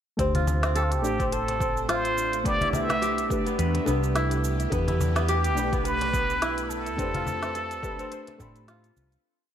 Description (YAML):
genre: organic downtempo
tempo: 106 BPM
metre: 4/4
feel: swing 56% on 16ths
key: D dorian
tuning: A4 = 439 Hz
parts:
  - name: deep mellow chord stab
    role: accompaniment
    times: 0.2-9.3 s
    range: A3 to B5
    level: -33 LUFS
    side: left 2 dB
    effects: chorus, cassette tape, sidechain pumping, digital delay
  - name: kora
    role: arpeggios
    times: 0.2-9.5 s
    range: B3 to C5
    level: -30 LUFS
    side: equal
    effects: digital delay
  - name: mellow fretless electric bass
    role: bass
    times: 0.2-9.2 s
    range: G1 to A2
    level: -28 LUFS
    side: equal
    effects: sidechain pumping
  - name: electronic kick drum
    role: drums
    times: 0.2-8.5 s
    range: none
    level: -32 LUFS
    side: equal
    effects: none
  - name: organic electronic drum kit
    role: drums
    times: 0.2-9.2 s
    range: cabasa, hi-hat, snare drum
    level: -33 LUFS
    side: equal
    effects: none
  - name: bowed-like drone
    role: sustained chords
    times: 1.4-9.3 s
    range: A3 to C5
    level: -35 LUFS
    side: right 2 dB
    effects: built-in reverb, phaser, sidechain pumping
  - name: cajon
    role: percussion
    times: 0.3-8.5 s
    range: none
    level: -34 LUFS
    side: left 2 dB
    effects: none
  - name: trumpet with plunger mute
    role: melody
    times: 0.8-9.0 s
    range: F4 to E5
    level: -29 LUFS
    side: right 1 dB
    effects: digital delay
room: light reverb, digital ambience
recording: none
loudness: -23 LUFS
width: side -9 dB against mid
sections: 0.2-9.2 chorus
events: fade-out 6.2-9.2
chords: 0.2 Dm7; 2.5 Cmaj7; 4.7 Em7; 7.0 F